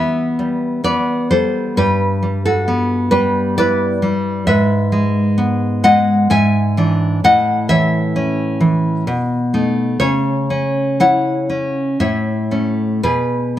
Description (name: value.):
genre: romantic piece for solo classical guitar.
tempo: 56-68 BPM.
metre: 3/4.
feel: rubato.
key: E minor, E major from 4.5 s.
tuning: A4 = 436 Hz.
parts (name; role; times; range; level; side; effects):
nylon-string guitar; solo; 0.0-13.6 s; G2 to G#5; -14 LUFS; equal; none.
room: light reverb.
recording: close, detailed microphones.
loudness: -14 LUFS.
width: side -12 dB against mid.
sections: 0.0-13.6 A section.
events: none.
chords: 0.0 Em; 1.8 Em/G; 4.5 E/G#; 6.3 E7/G#; 7.2 A; 9.1 B7; 10.0 C#m; 12.0 A; 13.0 E/B (rootless).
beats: 0.84 | 1.76 2.66 3.56 | 4.46 5.38 6.29 | 7.22 8.15 9.08 | 10.01 11.02 12.01 | 13.04.